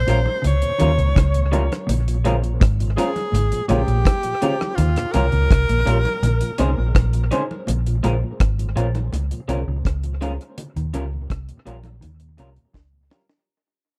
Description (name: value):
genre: lovers rock reggae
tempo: 83 BPM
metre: 4/4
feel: straight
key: Bb dorian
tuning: A4 = 440 Hz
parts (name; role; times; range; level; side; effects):
- clear tenor saxophone; melody; 0.0-7.3 s; F4 to Db5; -27 LUFS; equal; tape echo, plate reverb
- vintage muted fingered electric bass; bass; 0.0-13.1 s; Ab1 to Eb2; -23 LUFS; equal; none
- mellow FM electric piano; accompaniment; 0.1-13.2 s; Db4 to C5; -34 LUFS; equal; none
- mellow tonewheel organ; accompaniment; 0.1-13.2 s; Eb2 to Eb4; -35 LUFS; equal; none
- mellow electric guitar; riff; 0.1-13.0 s; Ab2 to Eb3; -31 LUFS; equal; none
- electric guitar through a small old amp; stabs; 0.1-13.2 s; G3 to C5; -28 LUFS; equal; lush chorus, plate reverb
- deep reggae drum kit; drums; 0.1-13.5 s; hi-hat, kick drum, rim click, snare drum; -22 LUFS; equal; none
- congas; percussion; 0.3-13.3 s; none; -33 LUFS; equal; none
room: little or no reverb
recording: dark, warm production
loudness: -20 LUFS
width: mono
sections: 0.0-7.7 A section; 7.7-13.5 B section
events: fade-out 7.7-13.5; drum fill 12.7-13.5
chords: 0.0 Eb9; 1.9 Bbm7; 4.8 Eb9; 6.2 Bbm11; 7.7 Bbm7; 10.6 Eb9